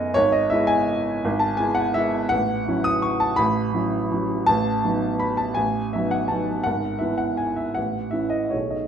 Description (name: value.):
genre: classical, piano waltz.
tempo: 166 BPM.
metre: 3/4.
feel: uneven beats, rubato.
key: E major.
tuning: A4 = 440 Hz.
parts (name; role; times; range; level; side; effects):
warm grand piano; solo; 0.0-8.9 s; G#1 to D#6; -20 LUFS; equal; none.
room: moderate recital hall reverb, RT60 1.4 s.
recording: minimal, uncompressed stereo recording.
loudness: -20 LUFS.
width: side -8 dB against mid.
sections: 0.0-8.9 A section.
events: none.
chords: 0.2 E/G#; 2.3 F#m7/A; 4.5 B7/A; 6.7 E/G#; 7.8 A.